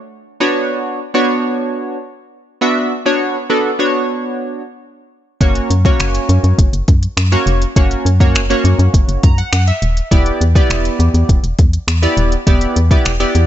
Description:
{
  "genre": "dance-pop",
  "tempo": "102 BPM",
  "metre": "4/4",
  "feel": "straight",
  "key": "unclear",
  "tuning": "A4 = 438 Hz",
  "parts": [
    { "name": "chorused retro synth keys", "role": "accompaniment", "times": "0.4-13.5 s", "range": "A#3 to A#5", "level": "-16 LUFS", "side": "right 1 dB", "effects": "sidechain pumping" },
    { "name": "organ-like FM bass", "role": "bass", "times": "5.4-13.4 s", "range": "Eb1 to F#2", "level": "-14 LUFS", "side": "equal", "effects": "sidechain pumping" },
    { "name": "smooth R&B drum kit", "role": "drums", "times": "5.4-13.5 s", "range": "finger snaps, hi-hat, kick drum", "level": "-14 LUFS", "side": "equal", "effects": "none" }
  ],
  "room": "little or no reverb",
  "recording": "nothing above 7.9 kHz",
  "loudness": "-12 LUFS",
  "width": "side -12 dB against mid",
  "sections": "0.0-13.5 A section",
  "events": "synth keys fill 8.9-10.1",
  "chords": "0.4 Bmadd9; 5.4 F#; 10.1 Em7"
}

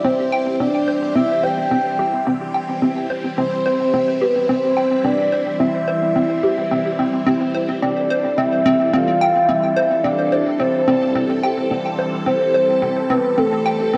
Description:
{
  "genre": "ambient, sequencer-driven space music",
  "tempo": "108 BPM",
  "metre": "4/4",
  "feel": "straight",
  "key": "C major",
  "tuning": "A4 = 440 Hz",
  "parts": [
    { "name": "soft octave-layered synth lead", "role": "melody", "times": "0.0-14.0 s", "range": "A4 to G5", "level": "-21 LUFS", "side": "equal", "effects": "chorus, phaser, delay" },
    { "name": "phased string machine", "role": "sustained chords", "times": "0.0-14.0 s", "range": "E3 to A4", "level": "-27 LUFS", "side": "equal", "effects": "ensemble chorus, phaser" },
    { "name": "hollow square pluck", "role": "riff", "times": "0.0-14.0 s", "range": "C4 to G5", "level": "-23 LUFS", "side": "equal", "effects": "lush chorus, delay" }
  ],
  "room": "wet echo chamber reverb, RT60 2.3 s",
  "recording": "echo-heavy mix",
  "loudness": "-18 LUFS",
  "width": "mono",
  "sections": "0.0-14.0 A section",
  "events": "fade-in on string machine 0.0-14.0",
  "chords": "0.0 C"
}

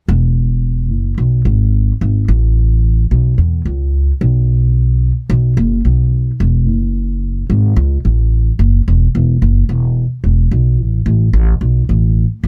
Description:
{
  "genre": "pop",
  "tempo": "109 BPM",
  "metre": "4/4",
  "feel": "swing 55% on 16ths",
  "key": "E major",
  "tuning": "A4 = 440 Hz",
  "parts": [
    { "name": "upright bass", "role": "bass", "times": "0.1-12.5 s", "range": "E1 to E2", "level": "-14 LUFS", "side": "equal", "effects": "none" }
  ],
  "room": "little or no reverb",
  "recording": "none",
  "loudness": "-14 LUFS",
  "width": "mono",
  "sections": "0.1-8.9 A section; 8.9-12.5 B section",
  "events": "none",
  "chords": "none"
}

